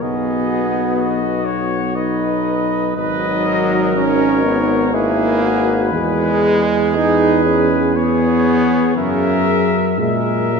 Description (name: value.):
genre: classical, hymn-like piece for brass band.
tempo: 60 BPM.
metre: 3/4.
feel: rubato.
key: unclear.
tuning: A4 = 439 Hz.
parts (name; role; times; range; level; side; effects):
warm cornet; melody; 0.0-10.6 s; B4 to E5; -23 LUFS; left 6 dB; none.
clear flugelhorn; second line; 0.0-10.6 s; F#4 to B4; -23 LUFS; right 4 dB; none.
clear euphonium; accompaniment; 0.0-10.6 s; D#4 to G#4; -23 LUFS; left 2 dB; none.
mellow trombone; accompaniment; 0.0-10.6 s; C#3 to D#4; -18 LUFS; right 1 dB; none.
warm tuba; bass; 0.0-10.6 s; G#1 to A#2; -20 LUFS; equal; none.
room: wet church reverb, RT60 3.0 s.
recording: recorded in a church or concert hall, nothing above 7.8 kHz.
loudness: -14 LUFS.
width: side -5 dB against mid.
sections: 0.0-10.6 A section.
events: none.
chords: 0.0 B; 3.0 G#m7; 5.9 C#m/E; 9.0 F#9.